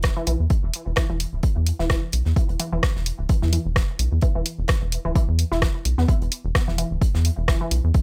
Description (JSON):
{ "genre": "minimal techno", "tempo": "129 BPM", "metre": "4/4", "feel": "swing 55% on 16ths", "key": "unclear", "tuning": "A4 = 445 Hz", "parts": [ { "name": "rubbery square bass", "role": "bass", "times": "0.0-7.9 s", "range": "D1 to E2", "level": "-25 LUFS", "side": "equal", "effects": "tube saturation, sidechain pumping" }, { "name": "electronic kick drum", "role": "drums", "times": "0.0-8.0 s", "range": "none", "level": "-23 LUFS", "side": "equal", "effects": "overdrive, small room ambience" }, { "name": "modern studio drum kit", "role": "drums", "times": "0.0-8.0 s", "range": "hi-hat, snare drum", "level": "-40 LUFS", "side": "equal", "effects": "sidechain pumping on hats, high-pass filter on hats, small room ambience, high-pass filter on snare, high-pass filter on room" }, { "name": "punchy analog drum machine", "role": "drums", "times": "0.0-7.8 s", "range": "hi-hat, rim click", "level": "-28 LUFS", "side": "equal", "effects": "overdrive, small room ambience" }, { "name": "resonant blip pluck", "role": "riff", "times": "0.2-7.6 s", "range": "E3 to E4", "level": "-33 LUFS", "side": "equal", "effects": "chorus, sidechain pumping, tape echo" } ], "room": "little or no reverb", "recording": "none", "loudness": "-22 LUFS", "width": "mono", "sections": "0.0-8.0 A section", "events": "none", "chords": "0.0 E5" }